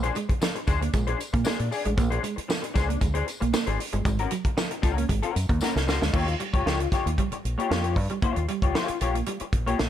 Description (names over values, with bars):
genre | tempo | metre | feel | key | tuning
funk | 115 BPM | 4/4 | straight | unclear | A4 = 439 Hz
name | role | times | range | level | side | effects
electric guitar through a small old amp | accompaniment | 0.0-9.8 s | Db4 to D5 | -30 LUFS | left 7 dB | analog chorus
clean electric guitar | riff | 0.0-9.9 s | F3 to Bb3 | -32 LUFS | right 5 dB | ensemble chorus
deep dub fingered electric bass | bass | 0.0-9.9 s | G1 to Bb2 | -27 LUFS | equal | none
tight funk drum kit | drums | 0.0-9.9 s | crash cymbal, hi-hat, kick drum, snare drum | -27 LUFS | equal | none
tambourine | percussion | 0.2-6.0 s | none | -42 LUFS | left 6 dB | none
room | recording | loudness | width
small room ambience | none | -23 LUFS | side -10 dB against mid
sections
0.0-6.1 A section; 6.1-9.9 B section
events
drum fill 5.6-6.1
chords
0.0 Bb9; 4.1 Ab9sus4; 6.1 Eb9 (rootless)